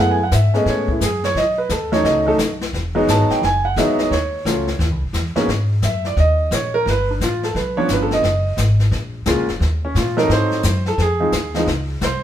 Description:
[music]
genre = jazz piano trio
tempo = 174 BPM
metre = 4/4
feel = swing 64% on 8ths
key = unclear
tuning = A4 = 440 Hz
[part]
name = warm concert grand piano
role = melody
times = 0.0-12.2 s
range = G#2 to A5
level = -18 LUFS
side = right 1 dB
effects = none
[part]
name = upright bass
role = bass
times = 0.0-12.2 s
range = E1 to A#2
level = -20 LUFS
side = equal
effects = none
[part]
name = jazz brush drum kit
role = drums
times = 0.3-12.2 s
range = brushed snare drum, hi-hat, kick drum, snare drum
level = -25 LUFS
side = left 3 dB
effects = none
[sound]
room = moderate stone room reverb, RT60 0.9 s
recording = band playing live in one room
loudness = -16 LUFS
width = side -10 dB against mid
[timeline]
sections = 0.0-5.5 A section; 5.5-12.2 B section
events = grand piano solo 5.5-12.2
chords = 0.0 F#m11; 1.4 B7; 2.7 Emaj9; 4.1 D#m7b5; 4.8 G#(b13); 5.5 G#sus2; 6.9 G7#11; 8.2 F#; 9.6 D#5; 10.3 G#7b9; 11.0 C#maj7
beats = 0.32 0.66 1.01 | 1.35 1.69 2.04 2.38 | 2.73 3.07 3.41 3.76 | 4.10 4.45 4.79 5.13 | 5.48 5.82 6.17 6.51 | 6.86 7.20 7.54 7.89 | 8.23 8.57 8.92 9.26 | 9.61 9.95 10.29 10.63 | 10.98 11.32 11.67 12.01

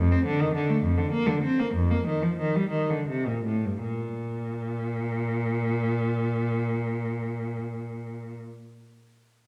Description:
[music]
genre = classical, baroque-style suite movement for unaccompanied cello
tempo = 51-73 BPM (dotted quarters)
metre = 12/8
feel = rubato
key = unclear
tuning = A4 = 440 Hz
[part]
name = rich cello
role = solo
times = 0.0-8.4 s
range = F2 to C4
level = -27 LUFS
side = equal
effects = none
[sound]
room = wet recital hall reverb, RT60 1.6 s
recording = dark, warm production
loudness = -27 LUFS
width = mono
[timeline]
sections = 0.0-3.8 A section; 3.8-8.3 B section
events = slowing down 0.0-3.8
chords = none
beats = 0.83 1.72 2.71 | 3.83 4.95 6.07 7.19

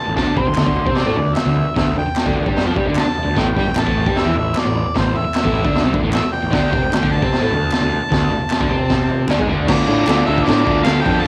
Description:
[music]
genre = garage rock duo or trio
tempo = 151 BPM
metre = 4/4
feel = straight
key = unclear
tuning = A4 = 440 Hz
[part]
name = clear harmonica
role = melody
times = 0.0-11.3 s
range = C5 to C6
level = -25 LUFS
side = equal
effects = overdrive, cassette tape
[part]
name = crunchy overdriven guitar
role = riff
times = 0.1-11.3 s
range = A2 to C5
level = -23 LUFS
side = equal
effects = cassette tape
[part]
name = fuzz picked electric bass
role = bass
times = 0.1-11.2 s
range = A1 to C3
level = -23 LUFS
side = equal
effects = overdrive
[part]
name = raw garage drum kit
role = drums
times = 0.2-11.2 s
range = crash cymbal, kick drum, snare drum, toms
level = -22 LUFS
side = equal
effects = cassette tape
[part]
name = group handclap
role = percussion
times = 0.5-10.9 s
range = none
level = -34 LUFS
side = equal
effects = none
[sound]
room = little or no reverb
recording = home recording on cassette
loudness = -17 LUFS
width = mono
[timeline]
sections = 0.0-9.7 A section; 9.7-11.3 B section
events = none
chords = 0.2 D5; 3.4 A5; 6.5 D5; 9.7 Dm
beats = | 0.17 0.57 0.97 1.37 | 1.77 2.16 2.56 2.96 | 3.36 3.76 4.15 4.55 | 4.95 5.35 5.74 6.14 | 6.54 6.93 7.33 7.72 | 8.12 8.51 8.91 9.30 | 9.69 10.08 10.47 10.87 | 11.26

